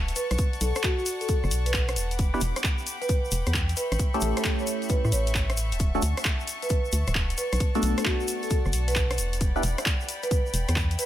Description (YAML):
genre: UK garage, two-step garage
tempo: 133 BPM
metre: 4/4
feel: swing 66% on 16ths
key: B minor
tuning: A4 = 439 Hz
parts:
  - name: warm studio violin section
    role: sustained chords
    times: 0.0-11.1 s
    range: C#5 to D6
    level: -37 LUFS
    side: left 2 dB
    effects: vintage 12-bit sampler grit, sidechain pumping
  - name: organ-like FM bass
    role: bass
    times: 0.0-11.0 s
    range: D1 to A2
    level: -26 LUFS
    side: equal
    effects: tube saturation
  - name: house drum kit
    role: drums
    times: 0.1-11.1 s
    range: handclaps, hi-hat, rim click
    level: -31 LUFS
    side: equal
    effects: small room reverb
  - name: egg shaker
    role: percussion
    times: 0.1-11.1 s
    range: none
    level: -36 LUFS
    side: left 2 dB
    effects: none
  - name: marimba with soft mallets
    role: melody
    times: 0.2-11.1 s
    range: F#4 to C#5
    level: -32 LUFS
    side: right 1 dB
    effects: dub echo
  - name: electronic kick drum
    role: drums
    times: 0.4-10.9 s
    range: none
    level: -26 LUFS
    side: equal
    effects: small room reverb
  - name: percussive organ stab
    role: stabs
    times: 2.3-9.6 s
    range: A3 to B4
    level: -30 LUFS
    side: right 1 dB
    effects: chorus, phaser, dub echo
room: studio ambience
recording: none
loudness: -23 LUFS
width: side -13 dB against mid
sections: 0.0-11.1 A section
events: none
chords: 0.2 Bm7; 2.2 Em7; 3.8 A7; 5.8 Dmaj7; 7.4 Bm7; 9.4 Em7